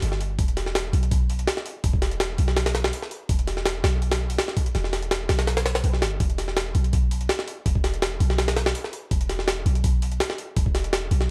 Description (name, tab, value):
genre	drum and bass, jungle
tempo	165 BPM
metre	4/4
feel	straight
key	E minor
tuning	A4 = 439 Hz
part	warm 808-style bass	bass	0.0-11.3 s	E1 to B1	-27 LUFS	equal	none
part	jungle sampler-style drum kit	drums	0.0-11.3 s	hi-hat, kick drum, snare drum	-26 LUFS	equal	none
room	little or no reverb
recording	vinyl crackle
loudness	-24 LUFS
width	mono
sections	0.0-11.3 A section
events	none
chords	none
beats	0.02 | 0.39 0.75 1.11 1.48 | 1.84 2.20 2.57 2.93 | 3.29 3.66 4.02 4.39 | 4.75 5.11 5.48 5.84 | 6.20 6.57 6.93 7.29 | 7.66 8.02 8.39 8.75 | 9.11 9.48 9.84 10.20 | 10.57 10.93 11.29